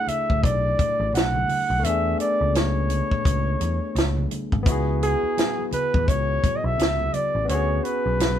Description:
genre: R&B, neo-soul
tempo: 85 BPM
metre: 4/4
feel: swing 61% on 16ths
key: unclear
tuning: A4 = 440 Hz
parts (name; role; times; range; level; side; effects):
- mellow flugelhorn; melody; 0.0-8.4 s; G#4 to F#5; -24 LUFS; right 1 dB; none
- barky tine electric piano; accompaniment; 0.0-8.4 s; A3 to G#4; -29 LUFS; left 4 dB; none
- picked electric bass; bass; 0.1-8.4 s; G#1 to E2; -25 LUFS; equal; none
- compact cocktail drum kit; drums; 0.1-8.4 s; hi-hat, kick drum, snare drum; -24 LUFS; equal; none
- congas; percussion; 0.1-8.4 s; none; -35 LUFS; right 4 dB; none
room: light reverb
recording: band playing live in one room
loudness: -20 LUFS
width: side -10 dB against mid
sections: 0.0-8.4 A section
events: none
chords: 0.0 Bm7; 1.8 E7sus4; 4.7 C#m7; 7.5 D6

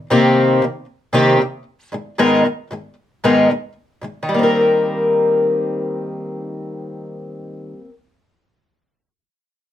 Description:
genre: pop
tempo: 115 BPM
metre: 4/4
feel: swing 60% on 16ths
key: Eb major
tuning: A4 = 441 Hz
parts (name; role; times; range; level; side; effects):
- fingerpicked twelve-string acoustic guitar; accompaniment; 0.0-7.9 s; Ab2 to Bb4; -15 LUFS; left 1 dB; none
room: moderate studio reverb, RT60 0.5 s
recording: none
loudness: -14 LUFS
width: side -11 dB against mid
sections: 0.0-4.3 A section; 4.3-8.5 B section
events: none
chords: 0.0 Cm7; 1.9 Abmadd9; 4.3 Eb6

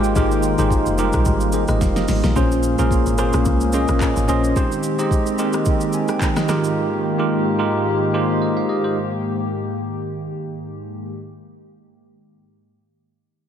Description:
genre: amapiano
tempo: 109 BPM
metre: 4/4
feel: swing 55% on 16ths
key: F minor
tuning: A4 = 440 Hz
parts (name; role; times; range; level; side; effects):
- bell-like tine electric piano; accompaniment; 0.0-9.1 s; G3 to Ab5; -21 LUFS; right 3 dB; fast stereo tremolo
- hollow soft pad; sustained chords; 0.0-11.1 s; Ab2 to G5; -23 LUFS; left 1 dB; chorus
- percussive organ stab; stabs; 0.0-4.5 s; Db4 to C5; -26 LUFS; left 4 dB; chorus, tape echo
- deep log drum bass; bass; 0.0-4.5 s; F1 to C2; -21 LUFS; equal; none
- smooth R&B drum kit; drums; 0.0-6.8 s; handclaps, hi-hat, kick drum, rim click, shaker, snare drum; -23 LUFS; equal; none
room: wet church reverb, RT60 2.9 s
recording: dreamy mix soaked in reverb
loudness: -17 LUFS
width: side -9 dB against mid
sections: 0.0-11.2 A section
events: drop 0.0-11.2; drum fill 1.8-2.4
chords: 0.0 Fm11; 2.4 Bbm9; 4.6 Abmaj7; 6.5 Fm11/Ab

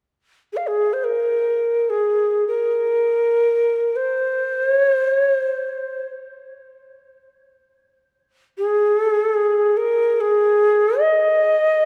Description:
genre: world meditative, free-time meditation music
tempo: free time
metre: none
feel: none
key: Ab major pentatonic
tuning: A4 = 440 Hz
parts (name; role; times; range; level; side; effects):
- mellow hollow Native American-style cedar flute; solo; 0.5-11.9 s; Ab4 to F5; -19 LUFS; equal; none
room: wet church reverb, RT60 2.8 s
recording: none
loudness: -19 LUFS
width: mono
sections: 0.0-11.9 A section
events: none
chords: none

